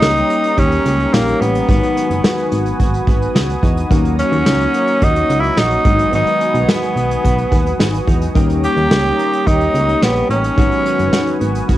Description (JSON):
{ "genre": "1980s-style pop", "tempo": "108 BPM", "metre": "4/4", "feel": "straight", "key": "G# minor", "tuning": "A4 = 440 Hz", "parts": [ { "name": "raspy tenor saxophone", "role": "melody", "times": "0.0-11.4 s", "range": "A#3 to G4", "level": "-17 LUFS", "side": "right 1 dB", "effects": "cassette tape, plate reverb" }, { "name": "bell-like tine electric piano", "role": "accompaniment", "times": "0.0-11.8 s", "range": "F#3 to D#4", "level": "-22 LUFS", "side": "left 6 dB", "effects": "analog chorus, cassette tape, plate reverb" }, { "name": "warm analog pad", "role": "sustained chords", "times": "0.0-11.8 s", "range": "F#4 to D#6", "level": "-24 LUFS", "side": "equal", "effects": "chorus, cassette tape, plate reverb" }, { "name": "direct-recorded clean electric guitar", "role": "riff", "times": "0.0-11.8 s", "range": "D#3 to G4", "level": "-25 LUFS", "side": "right 7 dB", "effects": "analog chorus, cassette tape, tape echo" }, { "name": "solid FM bass", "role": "bass", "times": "0.0-11.8 s", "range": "F#1 to E2", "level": "-19 LUFS", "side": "equal", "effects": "none" }, { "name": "vintage brush drum kit", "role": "drums", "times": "0.0-11.8 s", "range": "hi-hat, kick drum, snare drum", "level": "-17 LUFS", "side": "equal", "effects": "cassette tape" } ], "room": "moderate studio reverb, RT60 0.7 s", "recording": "home recording on cassette", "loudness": "-12 LUFS", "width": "side -14 dB against mid", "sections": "0.0-11.8 A section", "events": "none", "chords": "0.0 D#7; 1.7 G#m7; 3.9 D#m7; 5.9 G#m7; 8.4 D#7; 10.6 G#m7", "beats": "0.02 0.57 1.13 | 1.69 2.24 2.80 3.35 | 3.91 4.46 5.02 5.58 | 6.13 6.69 7.24 7.80 | 8.35 8.91 9.46 10.02 | 10.57 11.13 11.69" }